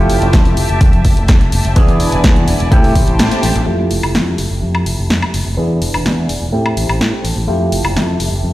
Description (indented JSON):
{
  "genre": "filtered disco house",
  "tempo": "126 BPM",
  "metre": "4/4",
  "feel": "straight",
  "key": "F major",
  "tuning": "A4 = 443 Hz",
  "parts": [
    { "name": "auto-wah clav", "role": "accompaniment", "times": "0.0-8.5 s", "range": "A3 to G#4", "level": "-20 LUFS", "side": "right 1 dB", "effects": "phaser, vintage 12-bit sampler grit, sidechain pumping, low-pass filter" },
    { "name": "rich symphonic violin section", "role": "sustained chords", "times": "0.0-8.5 s", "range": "E4 to A5", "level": "-25 LUFS", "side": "left 1 dB", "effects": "sidechain pumping, low-pass filter" },
    { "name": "fingered electric bass", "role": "bass", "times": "0.0-8.5 s", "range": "E1 to A2", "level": "-16 LUFS", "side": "equal", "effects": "sidechain pumping, low-pass filter" },
    { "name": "house drum kit", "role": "drums", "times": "0.1-8.3 s", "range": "hi-hat, snare drum, woodblock", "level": "-19 LUFS", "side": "left 1 dB", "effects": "sidechain pumping on hats, studio reverb, sidechain pumping on perc" },
    { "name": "electronic kick drum", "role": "drums", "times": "0.3-3.1 s", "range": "none", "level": "-11 LUFS", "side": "equal", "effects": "overdrive, studio reverb" }
  ],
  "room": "light reverb, digital ambience",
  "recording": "played on a big sound system in a bare room, stone room reverb",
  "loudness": "-11 LUFS",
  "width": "side -16 dB against mid",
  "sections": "0.0-3.7 A section; 3.7-8.5 B section",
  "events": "break 3.2-3.7; band accent 3.2; filter sweep 3.7-8.5",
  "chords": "0.0 Fmaj9; 1.8 E7; 2.7 Am7; 3.7 Fmaj9; 5.6 E7; 6.5 Am7; 7.5 Fmaj9"
}